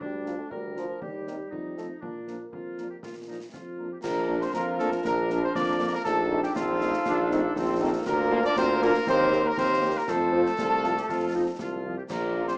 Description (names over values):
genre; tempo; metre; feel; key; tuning
military-style march for wind band; 119 BPM; 2/4; straight; Bb major; A4 = 439 Hz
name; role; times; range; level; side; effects
warm euphonium; second line; 0.0-12.6 s; F3 to D4; -33 LUFS; equal; none
warm woodwind section; second line; 0.0-12.6 s; D4 to D5; -34 LUFS; equal; none
warm tuba; bass; 0.0-12.5 s; Bb1 to Bb2; -29 LUFS; equal; none
concert bass drum, concert snare drum and clash cymbals; drums; 0.0-12.6 s; none; -40 LUFS; equal; none
mellow cornet; melody; 0.3-12.5 s; F4 to D5; -29 LUFS; equal; none
mellow French horn section; accompaniment; 0.3-12.4 s; F3 to G4; -31 LUFS; equal; none
mellow hollow flute section; second line; 4.0-12.5 s; F5 to D6; -34 LUFS; equal; none
clear trombone section; sustained chords; 4.0-11.8 s; A3 to F4; -34 LUFS; equal; none
room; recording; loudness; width
moderate large studio reverb, RT60 0.8 s; small speaker sound; -23 LUFS; side -28 dB against mid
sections
0.0-4.0 A section; 4.0-12.6 A section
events
none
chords
0.0 Bb/D; 1.0 Cm/Eb; 1.5 F7; 2.0 Bb; 6.1 F7/Bb; 8.1 Bb/D; 9.1 Cm7/Eb; 10.1 F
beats
| 0.01 0.52 | 1.02 1.52 | 2.03 2.53 | 3.04 3.54 | 4.04 4.55 | 5.05 5.55 | 6.06 6.56 | 7.06 7.57 | 8.07 8.57 | 9.08 9.58 | 10.08 10.59 | 11.09 11.59 | 12.10